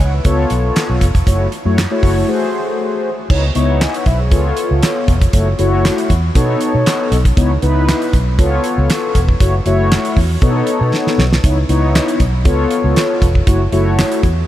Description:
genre	early-eighties boogie funk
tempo	118 BPM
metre	4/4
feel	straight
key	C# minor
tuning	A4 = 440 Hz
part	mellow synth brass	accompaniment	0.0-14.3 s	A3 to G#5	-16 LUFS	left 2 dB	chorus
part	vintage muted fingered electric bass	bass	0.0-14.4 s	E1 to B2	-15 LUFS	equal	none
part	damped 70s drum kit	drums	0.0-14.4 s	crash cymbal, handclaps, hi-hat, kick drum, snare drum	-17 LUFS	equal	none
room	light reverb, small room ambience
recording	faint mains hum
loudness	-12 LUFS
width	side -13 dB against mid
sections	0.0-3.3 A section; 3.3-14.5 B section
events	break 2.3-3.3; drum fill 10.9-11.4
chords	0.3 C#7alt; 1.3 F#m7; 2.3 G#7b9; 3.3 C#m9; 4.3 C#7alt; 5.3 F#m7; 6.4 B9; 7.4 C#m9; 8.4 C#7alt; 9.4 F#m7; 10.4 B9; 11.4 C#m9; 12.5 C#7alt; 13.5 F#m7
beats	0.25 0.76 | 1.27 1.78 2.29 2.79 | 3.30 3.81 4.32 4.83 | 5.33 5.84 6.35 6.86 | 7.37 7.88 8.39 8.89 | 9.40 9.91 10.42 10.93 | 11.44 11.95 12.45 12.96 | 13.47 13.98

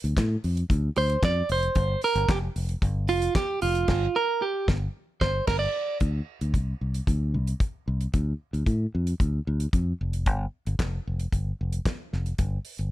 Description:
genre	disco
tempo	113 BPM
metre	4/4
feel	straight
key	D minor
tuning	A4 = 441 Hz
part	fingered electric bass	bass	0.0-12.9 s	F1 to A2	-26 LUFS	left 1 dB	none
part	damped 70s drum kit	drums	0.0-12.9 s	crash cymbal, handclaps, hi-hat, kick drum, snare drum	-27 LUFS	equal	none
part	clean electric guitar	accompaniment	1.0-6.0 s	F4 to D5	-25 LUFS	right 4 dB	none
room	small room ambience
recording	none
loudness	-24 LUFS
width	side -15 dB against mid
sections	0.0-6.0 A section; 6.0-12.9 B section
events	clean electric guitar solo 0.0-6.0; band accent 3.9-6.0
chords	0.0 Dm7; 1.8 Fsus24; 6.0 Dm7; 10.3 G7(no3)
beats	0.17 0.70 1.23 | 1.76 2.29 2.82 3.35 | 3.88 4.42 4.95 5.48 | 6.01 6.54 7.07 7.61 | 8.14 8.67 9.20 9.73 | 10.27 10.80 11.33 11.86 | 12.39

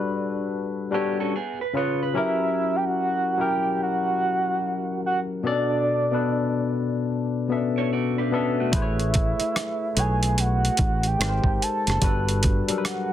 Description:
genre	R&B, neo-soul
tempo	73 BPM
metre	4/4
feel	swing 63% on 16ths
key	unclear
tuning	A4 = 440 Hz
part	soft octave-layered synth lead	melody	0.0-13.1 s	D5 to A5	-26 LUFS	right 3 dB	chorus, tremolo
part	barky tine electric piano	accompaniment	0.0-13.1 s	B2 to E5	-25 LUFS	left 4 dB	lush chorus
part	electric guitar through a small old amp	second line	0.9-2.4, 7.8-9.0 s	A3 to D5	-29 LUFS	right 7 dB	none
part	fingered electric bass	bass	8.7-12.7 s	F#1 to B1	-24 LUFS	right 1 dB	none
part	dusty soul sampler-style drum kit	drums	8.7-13.1 s	hi-hat, kick drum, rim click	-24 LUFS	right 1 dB	soft clipping on snare
room	light reverb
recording	dense, heavily limited modern master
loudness	-22 LUFS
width	side -11 dB against mid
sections	0.0-13.1 A section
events	none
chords	0.0 Gmaj9; 1.3 C#7; 2.2 F#7b9; 5.4 Bm7; 8.7 Amaj7; 11.2 G#maj9; 12.0 Gmaj9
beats	0.51 1.33 | 2.15 2.98 3.80 4.62 | 5.44 6.26 7.09 7.91 | 8.73 9.55 10.37 11.20 | 12.02 12.84

